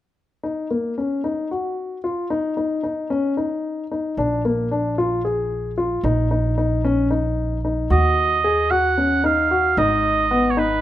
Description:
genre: contemporary instrumental, chamber music in an uneven meter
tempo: 225 BPM (eighths)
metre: 7/8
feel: straight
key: Eb minor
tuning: A4 = 440 Hz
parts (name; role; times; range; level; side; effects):
- warm grand piano; arpeggios; 0.4-10.8 s; Bb3 to Ab4; -21 LUFS; left 3 dB; none
- upright bass; bass; 4.2-10.8 s; Ab1 to Eb2; -23 LUFS; right 2 dB; none
- clear oboe; melody; 7.9-10.8 s; Cb5 to Gb5; -19 LUFS; right 5 dB; none
room: light reverb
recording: close, detailed microphones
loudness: -18 LUFS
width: side -13 dB against mid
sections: 0.4-7.9 A section; 7.9-10.8 B section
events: none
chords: 0.4 Ebm; 2.3 Dbsus2; 4.2 Bb7; 6.0 Bbmadd11; 7.9 Ebm; 9.8 Abm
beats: | 0.44 0.70 0.97 1.24 1.50 1.77 2.04 | 2.31 2.57 2.84 3.11 3.37 3.64 3.91 | 4.17 4.44 4.71 4.98 5.24 5.51 5.78 | 6.04 6.31 6.58 6.84 7.11 7.38 7.64 | 7.91 8.18 8.44 8.71 8.98 9.24 9.51 | 9.78 10.04 10.31 10.57

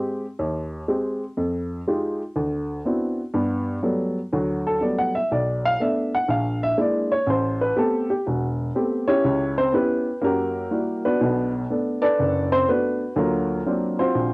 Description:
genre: solo jazz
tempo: 122 BPM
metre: 4/4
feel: swing 67% on 8ths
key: G major from 3.3 s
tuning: A4 = 439 Hz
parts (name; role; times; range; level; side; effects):
- warm upright piano; solo; 0.0-14.3 s; E1 to F#5; -20 LUFS; equal; cassette tape
room: light reverb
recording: home recording on cassette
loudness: -20 LUFS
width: side -28 dB against mid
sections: 0.0-3.3 A section; 3.3-14.3 B section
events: upright piano solo 3.3-14.3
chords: 0.0 Abmaj7; 1.4 Fm9; 2.4 D13; 3.3 Gmaj9; 5.3 Bm7b5; 6.3 Bb7#11; 7.3 Am9; 9.2 C#m7b5; 10.2 F#7b9; 11.2 Bm7; 13.2 D7alt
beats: 0.39 0.88 | 1.37 1.86 2.35 2.85 | 3.34 3.83 4.32 4.81 | 5.30 5.79 6.29 6.78 | 7.27 7.76 8.25 8.74 | 9.23 9.72 10.22 10.71 | 11.20 11.69 12.18 12.67 | 13.16 13.66 14.15

